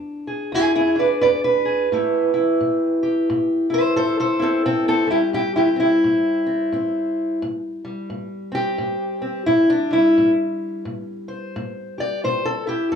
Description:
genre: acoustic country blues, solo or duo.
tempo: 87 BPM.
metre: 4/4.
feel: swing 61% on 8ths.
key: A minor.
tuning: A4 = 440 Hz.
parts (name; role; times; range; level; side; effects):
fingerpicked steel-string acoustic guitar; solo; 0.0-13.0 s; E2 to D5; -18 LUFS; equal; none.
room: light reverb.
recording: small room reverb.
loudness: -17 LUFS.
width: side -7 dB against mid.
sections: 0.0-7.4 A section; 7.4-13.0 B section.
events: steel-string acoustic guitar solo 7.4-13.0.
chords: 0.0 E7; 1.9 Am7.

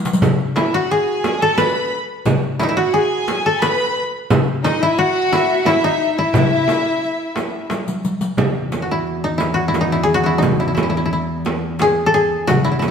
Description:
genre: Arabic maqam ensemble.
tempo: 88 BPM.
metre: 3/4.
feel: straight.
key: E maqam ajam.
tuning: A4 = 440 Hz.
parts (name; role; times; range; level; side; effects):
koto; melody; 0.0-12.9 s; D#4 to B4; -18 LUFS; left 1 dB; none.
darbuka; percussion; 0.1-12.9 s; none; -23 LUFS; left 1 dB; none.
riq; percussion; 0.1-12.9 s; none; -24 LUFS; left 1 dB; none.
frame drum; percussion; 0.2-12.9 s; none; -22 LUFS; right 3 dB; none.
dark violin; second line; 0.6-7.7 s; D#4 to B4; -22 LUFS; equal; none.
warm chamber violin section; second line; 0.6-7.7 s; D#5 to B5; -23 LUFS; left 3 dB; none.
dark cello; drone; 8.4-12.9 s; E2; -24 LUFS; left 1 dB; none.
room: wet stone room reverb, RT60 1.3 s.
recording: band playing live in one room.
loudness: -15 LUFS.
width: side -7 dB against mid.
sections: 0.0-8.4 A section; 8.4-12.9 B section.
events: drum fill 0.0, 7.7-8.4.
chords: none.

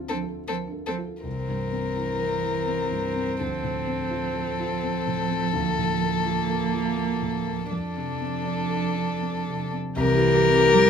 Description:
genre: neoclassical piano and strings.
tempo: 82 BPM.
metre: 3/4.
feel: uneven beats, rubato.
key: unclear.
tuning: A4 = 440 Hz.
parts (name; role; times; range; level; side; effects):
dark grand piano; accompaniment; 0.0-10.9 s; C2 to Bb4; -30 LUFS; left 2 dB; none.
rich violin; melody; 0.1-10.9 s; A4 to Bb4; -26 LUFS; left 5 dB; none.
warm cello; second line; 0.1-10.9 s; E3 to G3; -30 LUFS; right 9 dB; none.
warm viola; accompaniment; 0.1-10.9 s; Bb3 to G4; -30 LUFS; right 3 dB; none.
folk marimba with soft mallets; arpeggios; 0.1-1.2, 10.0-10.9 s; C4 to Bb4; -30 LUFS; equal; none.
room: light reverb.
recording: minimal, uncompressed stereo recording.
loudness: -23 LUFS.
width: side -7 dB against mid.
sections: 0.0-1.3 A section; 1.3-10.0 B section.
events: none.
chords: 0.0 Dm7; 1.3 C7; 3.4 Dm7; 5.6 Bbmaj7/D; 7.7 F6; 10.0 C7.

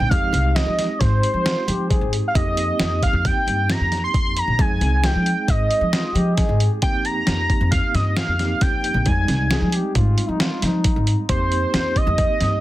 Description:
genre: progressive instrumental, band music in an uneven meter.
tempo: 134 BPM.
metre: 5/4.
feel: straight.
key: F minor.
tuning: A4 = 441 Hz.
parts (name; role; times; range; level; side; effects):
octave-doubled lead; melody; 0.0-12.6 s; C5 to C6; -22 LUFS; right 1 dB; chorus, plate reverb.
overdriven tine electric piano; accompaniment; 0.0-12.6 s; G3 to Ab4; -28 LUFS; right 3 dB; fast tremolo.
upright bass; bass; 0.0-12.6 s; Bb1 to F3; -21 LUFS; equal; none.
dusty soul sampler-style drum kit; drums; 0.1-12.5 s; hi-hat, kick drum, snare drum; -22 LUFS; equal; overdrive.
warm trombone; second line; 1.4-2.2, 5.9-11.2 s; Eb4 to Ab4; -29 LUFS; left 4 dB; plate reverb, tape echo.
room: light reverb.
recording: dense, heavily limited modern master.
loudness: -17 LUFS.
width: side -15 dB against mid.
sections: 0.0-12.6 A section.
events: none.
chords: 0.1 Fm7; 2.4 Cm7/F; 4.6 Fm7; 6.8 Cm7/F; 9.1 Fm7; 11.3 Cm7/F.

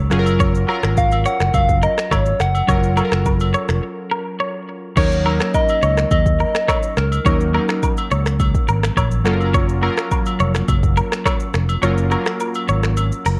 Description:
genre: afrobeats.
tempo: 105 BPM.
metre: 4/4.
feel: straight.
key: Eb minor.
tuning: A4 = 441 Hz.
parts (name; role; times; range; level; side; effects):
glassy digital keys; accompaniment; 0.0-13.4 s; Gb3 to Db5; -26 LUFS; equal; chorus.
semi-hollow electric guitar; riff; 0.0-13.4 s; Bb4 to Db5; -27 LUFS; equal; spring reverb, tape echo.
fretless electric bass; bass; 0.0-13.4 s; F1 to Eb2; -21 LUFS; equal; none.
afro-pop drum kit; drums; 0.1-13.4 s; crash cymbal, finger snaps, hi-hat, kick drum, rim click, shaker; -23 LUFS; equal; none.
agogo bells and woodblock; percussion; 0.3-13.1 s; none; -31 LUFS; equal; none.
soft struck synth lead; melody; 1.0-8.1 s; Bb4 to Gb5; -23 LUFS; equal; chorus, tape echo.
room: light reverb.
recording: worn, warbling old tape, cassette tape, warbly pitch drift.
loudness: -18 LUFS.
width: mono.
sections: 0.0-5.0 A section; 5.0-13.4 B section.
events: break 3.8-5.0; kick muted 11.8-13.4.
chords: 0.1 Gbmaj7; 5.0 Ebm7; 9.3 Gbmaj7.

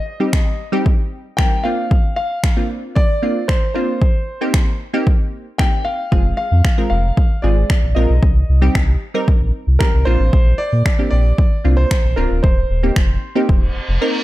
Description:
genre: dance-pop.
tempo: 114 BPM.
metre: 4/4.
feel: straight.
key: unclear.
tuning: A4 = 440 Hz.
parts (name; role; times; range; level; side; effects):
warm concert grand piano; melody; 0.0-14.0 s; Bb4 to G5; -24 LUFS; equal; dub echo.
wavetable chord stab; accompaniment; 0.2-14.2 s; G3 to Bb4; -21 LUFS; right 1 dB; sidechain pumping.
punchy analog drum machine; drums; 0.3-13.6 s; finger snaps, kick drum; -15 LUFS; equal; overdrive.
sub bass with octave; bass; 6.1-14.0 s; Db1 to Bb2; -15 LUFS; equal; sidechain pumping.
reverse cymbal; sound effects; 13.6-14.2 s; none; -24 LUFS; right 2 dB; none.
room: little or no reverb.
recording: dark, warm production.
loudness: -14 LUFS.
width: side -16 dB against mid.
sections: 0.0-14.2 A section.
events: reverse cymbal 13.6-14.2.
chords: 0.0 Cm; 1.6 Bbadd9; 4.0 Eb6; 6.1 Fm; 8.2 Cm; 10.1 Bbadd9; 12.4 Eb6.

